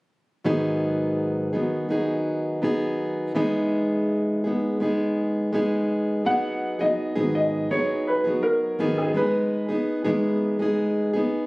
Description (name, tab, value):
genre	pop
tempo	83 BPM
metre	4/4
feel	straight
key	unclear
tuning	A4 = 440 Hz
part	fingerpicked plugged-in steel-string acoustic guitar	accompaniment	0.4-11.5 s	G#2 to G#4	-22 LUFS	equal	none
part	warm upright piano	melody	6.3-11.3 s	G#4 to F#5	-25 LUFS	equal	none
room	moderate studio reverb, RT60 0.8 s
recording	recorded on a phone in the room, club reverb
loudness	-22 LUFS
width	side -22 dB against mid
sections	0.4-6.3 A section; 6.3-11.5 B section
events	none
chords	0.4 G#m7; 3.4 Emaj7; 6.3 G#m7; 9.2 Emaj7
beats	| 0.45 1.17 1.90 2.63 | 3.35 4.08 4.80 5.53 | 6.26 6.98 7.71 8.43 | 9.15 9.88 10.60 11.33